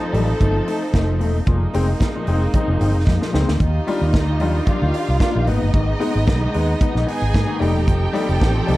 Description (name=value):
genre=disco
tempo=112 BPM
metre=4/4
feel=straight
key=Eb major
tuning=A4 = 441 Hz
part: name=bright concert grand piano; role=accompaniment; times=0.0-8.8 s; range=Ab2 to F4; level=-24 LUFS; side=left 3 dB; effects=none
part: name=rich studio string section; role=sustained chords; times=0.0-8.8 s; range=Eb3 to A4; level=-26 LUFS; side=right 1 dB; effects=none
part: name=fingered electric bass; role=bass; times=0.1-8.8 s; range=Fb1 to Ab2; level=-19 LUFS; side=equal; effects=none
part: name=tight funk drum kit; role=drums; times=0.1-8.8 s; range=hi-hat, kick drum, snare drum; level=-20 LUFS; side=equal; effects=none
part: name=congas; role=percussion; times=0.1-8.8 s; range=none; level=-30 LUFS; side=left 4 dB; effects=none
part: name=rich studio violin section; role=second line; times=3.6-8.8 s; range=Eb4 to Ab5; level=-26 LUFS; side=right 2 dB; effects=none
room=little or no reverb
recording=dark, warm production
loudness=-16 LUFS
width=side -17 dB against mid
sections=0.0-3.6 A section; 3.6-8.8 B section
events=drum fill 3.1-3.6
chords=0.0 F7; 1.5 Bb9sus4/F; 3.6 Ebmaj9; 5.5 Abm; 7.6 F7